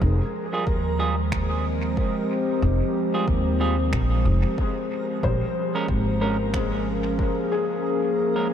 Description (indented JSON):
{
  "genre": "ambient dub",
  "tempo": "92 BPM",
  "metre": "4/4",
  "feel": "swing 58% on 16ths",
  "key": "F minor",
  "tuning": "A4 = 440 Hz",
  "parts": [
    { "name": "warbly tape-like pad", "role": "sustained chords", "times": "0.0-8.5 s", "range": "F3 to C5", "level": "-26 LUFS", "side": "equal", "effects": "chorus, built-in reverb" },
    { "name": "felt-muted upright piano", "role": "arpeggios", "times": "0.0-8.5 s", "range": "G3 to C5", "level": "-31 LUFS", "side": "left 4 dB", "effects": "tape echo" },
    { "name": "upright bass", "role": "bass", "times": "0.0-7.2 s", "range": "F1 to Eb2", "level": "-24 LUFS", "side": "equal", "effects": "tube saturation" },
    { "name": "electronic kick drum", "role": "drums", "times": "0.0-7.3 s", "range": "none", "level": "-27 LUFS", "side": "equal", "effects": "overdrive" },
    { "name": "backwards swelling texture", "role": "texture", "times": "0.0-8.5 s", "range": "Bb4", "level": "-37 LUFS", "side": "right 3 dB", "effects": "built-in reverb" },
    { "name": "semi-hollow electric guitar", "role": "stabs", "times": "0.5-8.5 s", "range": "G3 to Bb4", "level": "-32 LUFS", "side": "right 3 dB", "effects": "dub echo" },
    { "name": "electronic finger snaps", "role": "drums", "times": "1.3-6.7 s", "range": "none", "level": "-39 LUFS", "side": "right 2 dB", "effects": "dub echo" }
  ],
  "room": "moderate huge ambient reverb, RT60 9.4 s",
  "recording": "dreamy mix soaked in reverb",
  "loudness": "-21 LUFS",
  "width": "side -9 dB against mid",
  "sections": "0.0-8.5 A section",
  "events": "none",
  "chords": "0.0 Fmadd9; 5.2 Bbm7"
}